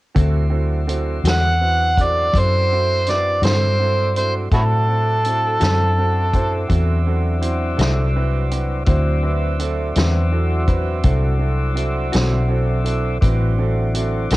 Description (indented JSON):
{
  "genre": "slow blues",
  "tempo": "55 BPM (dotted quarters)",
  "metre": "12/8",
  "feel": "straight",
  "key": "D mixolydian",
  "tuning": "A4 = 441 Hz",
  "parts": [
    { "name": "clear grand piano", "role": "accompaniment", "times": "0.1-14.4 s", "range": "C4 to C5", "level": "-27 LUFS", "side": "right 6 dB", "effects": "cassette tape" },
    { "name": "mellow electric guitar", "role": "accompaniment", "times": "0.2-14.4 s", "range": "D3 to F#4", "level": "-28 LUFS", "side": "left 6 dB", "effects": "tremolo, cassette tape" },
    { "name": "tonewheel organ", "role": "sustained chords", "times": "0.2-14.4 s", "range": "E3 to C5", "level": "-28 LUFS", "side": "left 1 dB", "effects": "slow rotary speaker, cassette tape" },
    { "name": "vintage muted fingered electric bass", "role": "bass", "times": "0.2-14.4 s", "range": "A1 to A2", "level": "-18 LUFS", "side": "equal", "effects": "none" },
    { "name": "vintage drum kit", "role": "drums", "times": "0.2-14.4 s", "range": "hi-hat, kick drum, snare drum", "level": "-21 LUFS", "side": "equal", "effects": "cassette tape" },
    { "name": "overdriven harmonica", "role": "melody", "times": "1.3-6.7 s", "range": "E4 to F#5", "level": "-18 LUFS", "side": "right 1 dB", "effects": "cassette tape" }
  ],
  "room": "studio reverb",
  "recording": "home recording on cassette",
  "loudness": "-16 LUFS",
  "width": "side -18 dB against mid",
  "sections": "0.2-14.4 A section",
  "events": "none",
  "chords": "0.2 D9"
}